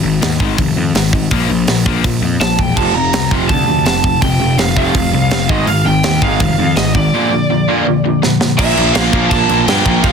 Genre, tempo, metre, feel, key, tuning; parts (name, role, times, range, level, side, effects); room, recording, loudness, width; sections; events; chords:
punk rock; 165 BPM; 4/4; straight; A4 = 440 Hz
cranked stack guitar; riff; 0.0-10.1 s; F2 to D4; -17 LUFS; left 12 dB; overdrive
fuzz picked electric bass; bass; 0.0-10.1 s; E1 to G2; -18 LUFS; right 1 dB; overdrive
tight metal drum kit; drums; 0.2-10.1 s; crash cymbal, hi-hat, kick drum, snare drum; -17 LUFS; right 1 dB; soft clipping on kick
lead guitar through a small cranked amp; melody; 2.4-10.1 s; D5 to Bb5; -17 LUFS; right 1 dB; overdrive
overdriven semi-hollow guitar; riff; 2.8-10.1 s; F2 to Bb3; -18 LUFS; right 13 dB
heavy high-gain guitar; riff; 8.6-10.1 s; F2 to Bb3; -20 LUFS; right 3 dB; distortion
light reverb; dense, heavily limited modern master; -11 LUFS; side -6 dB against mid
0.0-8.6 A section; 8.6-10.1 B section
drum fill 8.2-8.6
0.0 Ab5; 1.3 Bb5; 2.8 F; 5.5 Ab5; 7.1 Bb